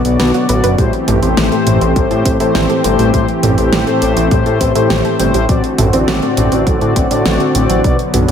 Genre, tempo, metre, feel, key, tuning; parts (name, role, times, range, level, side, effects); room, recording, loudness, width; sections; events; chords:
synthwave; 102 BPM; 4/4; straight; A dorian; A4 = 442 Hz
warm analog pad; sustained chords; 0.0-8.3 s; D3 to G4; -17 LUFS; right 1 dB; wide subtle chorus, sidechain pumping
analog pluck; arpeggios; 0.0-8.3 s; F#3 to B4; -22 LUFS; right 4 dB; chorus, tape echo
mellow synth brass; stabs; 0.0-8.3 s; A2 to D5; -16 LUFS; left 5 dB; chorus, tape echo
fat analog bass; bass; 0.0-8.3 s; F#1 to A2; -16 LUFS; equal; sidechain pumping
pop drum kit; drums; 0.0-8.3 s; hi-hat, snare drum, toms; -19 LUFS; right 1 dB
electronic kick drum; drums; 0.8-8.0 s; -17 LUFS; equal
light reverb, digital ambience; -11 LUFS; side -8 dB against mid
0.0-8.3 A section
0.0 Bm; 0.8 Am7; 5.5 D7/A